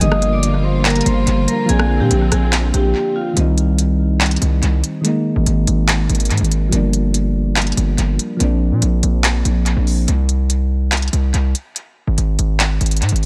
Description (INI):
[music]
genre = hip hop, trap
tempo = 143 BPM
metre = 4/4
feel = half-time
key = C minor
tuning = A4 = 441 Hz
[part]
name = vibraphone with medium hard mallets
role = melody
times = 0.0-3.4 s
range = F4 to Eb6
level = -24 LUFS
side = equal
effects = low-pass filter, tape echo
[part]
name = soft electric-piano-like synth keys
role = accompaniment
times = 0.0-10.1 s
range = D3 to Eb4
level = -23 LUFS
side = equal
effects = chorus, low-pass filter
[part]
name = rich symphonic string section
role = sustained chords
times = 0.0-3.4 s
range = D3 to F4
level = -25 LUFS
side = equal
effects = none
[part]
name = distorted 808-style bass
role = bass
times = 0.0-13.3 s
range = G1 to Bb2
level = -18 LUFS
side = equal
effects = distortion
[part]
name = trap drum kit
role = drums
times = 0.0-13.3 s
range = handclaps, hi-hat, rim click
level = -23 LUFS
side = equal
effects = tape echo
[sound]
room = small room ambience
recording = echo-heavy mix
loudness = -17 LUFS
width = mono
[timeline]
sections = 0.0-3.4 A section; 3.4-13.3 B section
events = break 2.9-3.4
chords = 0.0 Gm7; 1.7 Bbadd9; 3.4 Cm; 5.0 Absus2; 6.7 Gm7; 8.4 Bbadd9; 10.1 N.C.